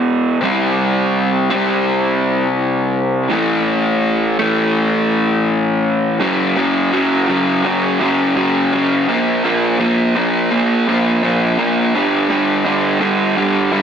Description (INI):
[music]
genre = rock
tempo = 84 BPM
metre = 4/4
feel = straight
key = unclear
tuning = A4 = 440 Hz
[part]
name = raw garage guitar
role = solo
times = 0.0-13.8 s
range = E2 to C4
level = -13 LUFS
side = equal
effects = overdrive
[sound]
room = light reverb, digital ambience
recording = dense, heavily limited modern master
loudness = -13 LUFS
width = side -8 dB against mid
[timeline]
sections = 0.0-6.2 A section; 6.2-13.8 B section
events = none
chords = 0.4 C5; 3.3 A5; 6.2 F#5; 9.1 Bb5; 11.9 G5